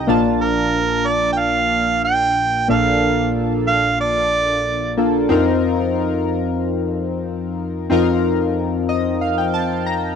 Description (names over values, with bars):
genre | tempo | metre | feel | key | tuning
pop | 92 BPM | 4/4 | straight | unclear | A4 = 439 Hz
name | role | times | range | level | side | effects
chorused retro synth keys | accompaniment | 0.0-10.2 s | Bb1 to Bb5 | -18 LUFS | left 1 dB | none
mellow harmonica | melody | 0.4-4.9 s | Bb4 to G5 | -18 LUFS | right 3 dB | none
room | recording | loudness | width
moderate booth ambience, RT60 0.2 s | dry, close 1970s-style studio recording | -16 LUFS | side -7 dB against mid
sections
0.0-10.2 A section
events
synth keys fill 8.6-10.2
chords
0.1 Bbmaj7; 5.3 F7sus4